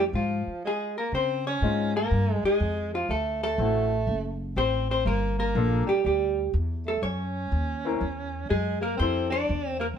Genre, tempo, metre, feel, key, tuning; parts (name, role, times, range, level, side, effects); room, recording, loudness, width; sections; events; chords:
jazz, small-group swing and bop; 122 BPM; 4/4; swing 66% on 8ths; A4 = 440 Hz
vintage hollow-body jazz guitar; melody; 0.0-9.9 s; F4 to D5; -28 LUFS; left 1 dB
bright alto saxophone; second line; 0.0-9.9 s; F3 to D4; -31 LUFS; right 4 dB
upright bass; bass; 0.0-10.0 s; F#1 to Db3; -28 LUFS; equal
clear baby grand piano; accompaniment; 1.6-9.3 s; Ab3 to Bb4; -30 LUFS; left 6 dB
moderate stone room reverb, RT60 1.0 s; band playing live in one room; -24 LUFS; side -8 dB against mid
0.0-1.1 A section; 1.1-10.0 B section
0.1 Fmadd11/Ab; 1.1 Dbmaj7; 3.1 D7; 5.1 Gm7; 7.0 Gb7(no3); 9.0 Fmaj7